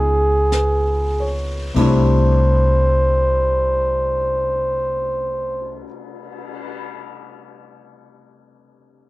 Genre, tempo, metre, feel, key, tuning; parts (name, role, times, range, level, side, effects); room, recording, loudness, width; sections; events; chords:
jazz ballad; 46 BPM; 4/4; swing 66% on 8ths; C major; A4 = 441 Hz
trumpet with bucket mute; melody; 0.0-5.8 s; Ab4 to C5; -19 LUFS; equal
warm grand piano; accompaniment; 0.0-9.1 s; C3 to Db5; -24 LUFS; left 3 dB
upright bass; bass; 0.0-5.8 s; C2 to Db2; -19 LUFS; equal
jazz brush drum kit; drums; 0.5-6.7 s; cymbal swell, hi-hat, kick drum, ride cymbal, snare drum; -32 LUFS; left 2 dB
little or no reverb; dry, close 1970s-style studio recording; -16 LUFS; side -18 dB against mid
0.0-1.8 A section; 1.8-7.0 B section
slowing down 0.0-1.8
0.0 Db7; 1.8 C69